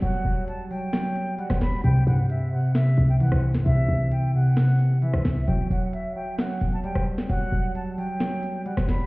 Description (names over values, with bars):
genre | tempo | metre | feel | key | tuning
hip hop, trap | 132 BPM | 4/4 | half-time | E minor | A4 = 441 Hz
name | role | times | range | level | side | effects
breathy concert flute | melody | 0.0-9.1 s | E5 to B5 | -32 LUFS | right 1 dB | low-pass filter, tape echo
warbly lo-fi synth keys | accompaniment | 0.0-9.1 s | C3 to G3 | -23 LUFS | equal | chorus, low-pass filter
short 808-style bass | bass | 0.0-9.1 s | E1 to C3 | -26 LUFS | equal | none
trap drum kit | drums | 0.0-9.0 s | hi-hat, rim click, snare drum | -30 LUFS | equal | overdrive
room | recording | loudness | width
digital ambience | heard muffled through a wall, stone room reverb, EQ | -21 LUFS | side -23 dB against mid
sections
0.0-9.1 A section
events
none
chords
0.0 Emadd9; 1.8 C; 5.5 Emadd9